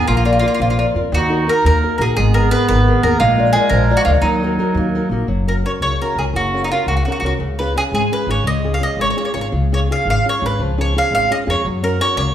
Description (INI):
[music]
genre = italian folk, Italian serenade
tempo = 114 BPM (dotted quarters)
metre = 6/8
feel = straight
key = Eb harmonic minor, F# major from 5.3 s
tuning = A4 = 440 Hz
[part]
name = mandolin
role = melody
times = 0.0-12.3 s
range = Eb4 to E#5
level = -18 LUFS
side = right 1 dB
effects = none
[part]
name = bright clarinet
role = second line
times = 0.0-5.3 s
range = Gb3 to Eb4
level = -21 LUFS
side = right 2 dB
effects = none
[part]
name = nylon-string guitar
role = accompaniment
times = 0.0-12.3 s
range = C#3 to D5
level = -21 LUFS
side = left 2 dB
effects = none
[part]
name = upright bass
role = bass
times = 0.0-12.3 s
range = F#1 to F#2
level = -18 LUFS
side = equal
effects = none
[sound]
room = wet large studio reverb, RT60 1.3 s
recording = band playing live in one room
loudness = -14 LUFS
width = side -10 dB against mid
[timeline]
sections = 0.0-5.3 A section; 5.3-12.3 B section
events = none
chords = 0.1 Bb; 1.1 Ebm; 2.2 Abmadd9; 3.2 Bb; 4.2 Ebm; 5.3 F#; 7.4 C#; 11.7 F#